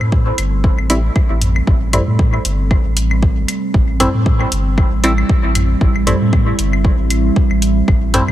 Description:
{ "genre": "dub techno", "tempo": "116 BPM", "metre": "4/4", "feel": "swing 56% on 16ths", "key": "A minor", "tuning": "A4 = 440 Hz", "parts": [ { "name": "deep dark ambient pad", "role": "sustained chords", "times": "0.0-8.3 s", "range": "G3 to A4", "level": "-22 LUFS", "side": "right 3 dB", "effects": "chorus, built-in reverb, sidechain pumping" }, { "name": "warm sub bass", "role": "bass", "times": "0.0-8.3 s", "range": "G1 to A2", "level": "-17 LUFS", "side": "equal", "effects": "sidechain pumping" }, { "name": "electronic claves and toms", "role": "percussion", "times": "0.0-8.3 s", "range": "none", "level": "-25 LUFS", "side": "left 1 dB", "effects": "overdrive, sidechain pumping on toms, sidechain pumping on perc, dub echo" }, { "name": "electronic kick drum", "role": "drums", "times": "0.1-8.0 s", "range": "none", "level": "-14 LUFS", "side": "equal", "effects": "overdrive" }, { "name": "electronic hi-hat", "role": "drums", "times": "0.4-8.3 s", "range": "none", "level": "-21 LUFS", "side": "equal", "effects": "overdrive" }, { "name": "filtered dub chord stab", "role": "stabs", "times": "0.9-8.2 s", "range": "G3 to E4", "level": "-21 LUFS", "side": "equal", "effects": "chorus, phaser, cassette tape, sidechain pumping, dub echo" } ], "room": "digital ambience", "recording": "none", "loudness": "-12 LUFS", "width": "side -13 dB against mid", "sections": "0.0-8.3 A section", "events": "none", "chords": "0.0 Am7" }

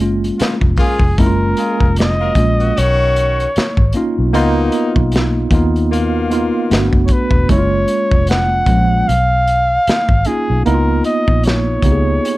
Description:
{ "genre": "R&B, neo-soul", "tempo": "76 BPM", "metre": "4/4", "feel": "swing 58% on 16ths", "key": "F# major", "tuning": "A4 = 442 Hz", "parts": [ { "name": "mellow tine electric piano", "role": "accompaniment", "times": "0.0-12.4 s", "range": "E#3 to G#4", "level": "-17 LUFS", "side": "right 1 dB", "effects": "medium stereo tremolo" }, { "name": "vintage muted fingered electric bass", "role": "bass", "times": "0.0-12.2 s", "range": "E1 to D#2", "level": "-17 LUFS", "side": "equal", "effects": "none" }, { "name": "crunchy breakbeat drum kit", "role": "drums", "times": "0.2-12.4 s", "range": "hi-hat, kick drum, snare drum", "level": "-16 LUFS", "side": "equal", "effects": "none" }, { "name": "clear horn section", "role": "stabs", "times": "0.4-6.9 s", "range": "B2 to A#4", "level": "-22 LUFS", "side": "left 5 dB", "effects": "none" }, { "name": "warm flugelhorn", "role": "melody", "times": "0.8-12.4 s", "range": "G#4 to F#5", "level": "-17 LUFS", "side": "equal", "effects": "none" } ], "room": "light reverb", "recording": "dark, warm production", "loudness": "-12 LUFS", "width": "side -18 dB against mid", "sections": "0.0-1.2 A section; 1.2-12.4 B section", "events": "band accent 0.0-1.2", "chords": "0.0 F#maj9; 2.8 Bmaj9#11; 4.3 C#13; 6.7 Gmaj7; 7.5 F#maj7; 9.1 Bmaj9#11; 10.7 C#13" }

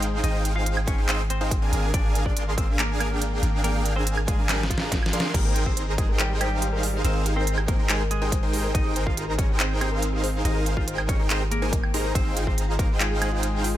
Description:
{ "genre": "future bass", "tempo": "141 BPM", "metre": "4/4", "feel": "half-time", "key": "Ab major", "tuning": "A4 = 440 Hz", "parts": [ { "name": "semi-hollow electric guitar", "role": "melody", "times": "0.0-13.8 s", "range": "F3 to F5", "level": "-32 LUFS", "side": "left 1 dB", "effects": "wide subtle chorus, sidechain pumping, dub echo" }, { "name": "dense compressed supersaw", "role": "riff", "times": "0.0-13.8 s", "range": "D4 to C6", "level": "-29 LUFS", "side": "right 1 dB", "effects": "sidechain pumping" }, { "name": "long sustained 808-style bass", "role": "bass", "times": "0.0-13.8 s", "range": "Ab1", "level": "-26 LUFS", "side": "equal", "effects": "sidechain pumping" }, { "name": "dubstep drum kit", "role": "drums", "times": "0.0-13.7 s", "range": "crash cymbal, handclaps, hi-hat, ride cymbal, snare drum, woodblock", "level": "-28 LUFS", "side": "right 1 dB", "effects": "none" }, { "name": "electronic kick drum", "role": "drums", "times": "0.9-12.9 s", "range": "none", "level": "-25 LUFS", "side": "equal", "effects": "none" }, { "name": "thumb-piano-like synth pluck", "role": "arpeggios", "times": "5.3-13.8 s", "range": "F4 to G5", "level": "-35 LUFS", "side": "left 4 dB", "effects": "chorus, sidechain pumping, ping-pong delay" } ], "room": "digital ambience", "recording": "none", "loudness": "-22 LUFS", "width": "side -13 dB against mid", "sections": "0.0-13.8 A section", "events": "drum fill 4.5-5.3", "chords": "0.0 Fm9/Ab; 1.7 Bb7/Ab; 5.3 Abmaj9" }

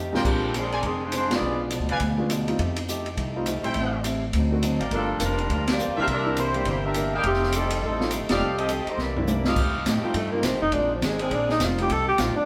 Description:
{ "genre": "jazz, big band swing", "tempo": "206 BPM", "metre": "4/4", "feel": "swing 62% on 8ths", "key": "F mixolydian", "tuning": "A4 = 440 Hz", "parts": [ { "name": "picked acoustic archtop guitar", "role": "accompaniment", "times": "0.0-12.4 s", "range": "G2 to G4", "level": "-35 LUFS", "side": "equal", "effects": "none" }, { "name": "upright bass", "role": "bass", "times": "0.0-12.4 s", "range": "E1 to A2", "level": "-31 LUFS", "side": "equal", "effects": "none" }, { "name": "warm grand piano", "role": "accompaniment", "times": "0.1-12.4 s", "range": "Eb3 to G4", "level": "-33 LUFS", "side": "equal", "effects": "none" }, { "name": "warm trumpet section", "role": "stabs", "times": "0.1-9.8 s", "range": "G4 to G#5", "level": "-33 LUFS", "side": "equal", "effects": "none" }, { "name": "open jazz drum kit", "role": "drums", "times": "0.1-12.3 s", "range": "crash cymbal, hi-hat, kick drum, ride cymbal, snare drum, toms", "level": "-32 LUFS", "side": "equal", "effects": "none" }, { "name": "dark saxophone section", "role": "melody", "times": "0.3-1.6, 4.9-9.5 s", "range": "Eb3 to G5", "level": "-29 LUFS", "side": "equal", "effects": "none" }, { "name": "clear saxophone section", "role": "sustained chords", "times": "10.0-11.6 s", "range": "D3 to Ab4", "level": "-37 LUFS", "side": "equal", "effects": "none" }, { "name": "breathy tenor saxophone", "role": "melody", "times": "10.2-12.5 s", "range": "F3 to A4", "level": "-26 LUFS", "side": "equal", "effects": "none" } ], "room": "wet stone room reverb, RT60 1.4 s", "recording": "band playing live in one room", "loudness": "-25 LUFS", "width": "mono", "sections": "0.0-9.6 A section; 9.6-12.5 B section", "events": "drum fill 0.0, 9.0-9.6; band accent 1.3, 5.6, 8.3; tenor saxophone solo 9.6-12.5", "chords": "0.3 Bb9; 1.4 Bdim7; 2.6 F9; 3.8 Am7; 4.3 D7b9; 4.9 Gm7; 6.1 C9; 7.2 F9; 9.0 C9; 9.6 F9; 10.7 Bb9; 11.9 F9" }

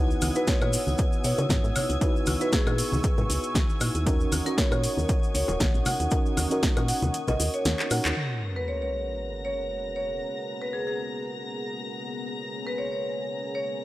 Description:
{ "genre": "deep house", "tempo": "117 BPM", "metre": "4/4", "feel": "swing 55% on 16ths", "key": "G# minor", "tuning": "A4 = 439 Hz", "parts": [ { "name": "dark analog pad", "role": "sustained chords", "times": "0.0-13.8 s", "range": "B3 to E6", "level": "-36 LUFS", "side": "right 1 dB", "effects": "chorus, sidechain pumping" }, { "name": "mellow FM electric piano", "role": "stabs", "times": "0.0-8.1 s", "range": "C#4 to B4", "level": "-32 LUFS", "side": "right 1 dB", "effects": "chorus, tremolo, sidechain pumping, analog delay" }, { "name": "woody FM bass", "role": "bass", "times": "0.0-8.1 s", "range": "D#1 to C#3", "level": "-28 LUFS", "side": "equal", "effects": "sidechain pumping" }, { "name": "clear chamber violin section", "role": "texture", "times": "0.0-13.8 s", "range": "G#5 to A#6", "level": "-41 LUFS", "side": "left 4 dB", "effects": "none" }, { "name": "cabasa", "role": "percussion", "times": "0.1-8.1 s", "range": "none", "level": "-37 LUFS", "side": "left 2 dB", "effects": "none" }, { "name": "deep house drum kit", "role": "drums", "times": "0.2-8.1 s", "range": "handclaps, hi-hat, snare drum, woodblock", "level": "-30 LUFS", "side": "equal", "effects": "overdrive" }, { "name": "congas and bongos", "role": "percussion", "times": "0.2-7.8 s", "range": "none", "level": "-33 LUFS", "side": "left 2 dB", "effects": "sidechain pumping on perc" }, { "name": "marimba with medium hard mallets", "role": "melody", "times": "0.4-13.7 s", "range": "G#4 to F#5", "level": "-32 LUFS", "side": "equal", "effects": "analog delay" }, { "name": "electronic kick drum", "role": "drums", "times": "0.5-6.7 s", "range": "none", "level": "-25 LUFS", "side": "equal", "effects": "none" }, { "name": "sub drop", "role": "sound effects", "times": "8.2-10.2 s", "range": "none", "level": "-34 LUFS", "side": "equal", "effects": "none" }, { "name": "deep dark ambient pad", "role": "texture", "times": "10.1-13.8 s", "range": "B3 to A#5", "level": "-40 LUFS", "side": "left 2 dB", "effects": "chorus, built-in reverb, sidechain pumping" } ], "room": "light reverb, studio ambience", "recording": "dry, gritty hardware recording, transformer saturation", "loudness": "-24 LUFS", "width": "side -16 dB against mid", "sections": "0.0-8.2 A section; 8.2-13.8 B section", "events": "kick drops out 7.1-8.2; drum fill 7.8-8.2; band accent 8.0; impact 8.2-10.2", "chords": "0.0 C#m11; 4.1 D#m7; 8.2 G#m11" }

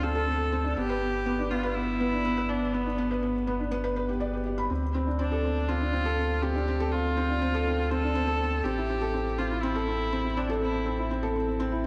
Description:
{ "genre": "piano and strings electronica", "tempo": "122 BPM", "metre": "4/4", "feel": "straight", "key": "unclear", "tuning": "A4 = 440 Hz", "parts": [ { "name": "warm viola", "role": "melody", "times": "0.0-11.1 s", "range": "B3 to A4", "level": "-34 LUFS", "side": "equal", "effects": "delay" }, { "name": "felt-muted upright piano", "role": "riff", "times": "0.0-11.9 s", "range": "B3 to B5", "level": "-31 LUFS", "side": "equal", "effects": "lush chorus, delay" }, { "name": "warm sub bass", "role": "bass", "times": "0.0-11.9 s", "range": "G1 to D2", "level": "-34 LUFS", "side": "equal", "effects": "tube saturation" } ], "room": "moderate plate reverb, RT60 2.9 s", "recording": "dreamy mix soaked in reverb", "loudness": "-28 LUFS", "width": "mono", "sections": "0.0-11.9 A section", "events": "none", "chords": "0.0 D7(no3); 0.8 G; 4.7 Dm7; 8.6 Am7" }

